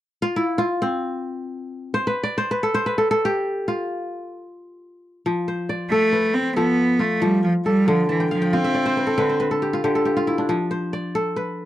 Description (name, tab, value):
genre	west african traditional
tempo	92 BPM (dotted quarters)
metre	12/8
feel	straight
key	F lydian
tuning	A4 = 441 Hz
part	kora	arpeggios	0.2-11.7 s	D3 to A5	-21 LUFS	left 1 dB	none
part	clear cello	melody	5.9-9.4 s	E3 to C4	-20 LUFS	right 1 dB	none
room	little or no reverb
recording	dry, close 1970s-style studio recording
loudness	-19 LUFS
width	side -13 dB against mid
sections	0.0-5.3 A section; 5.3-11.7 B section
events	kora solo 0.0-5.3; kora fill 8.1-10.5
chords	0.0 N.C.; 5.3 F; 7.9 Dm; 10.5 F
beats	| 0.00 0.66 1.32 1.97 | 2.63 3.28 3.94 4.60 | 5.25 5.91 6.56 7.22 | 7.87 8.53 9.18 9.83 | 10.49 11.14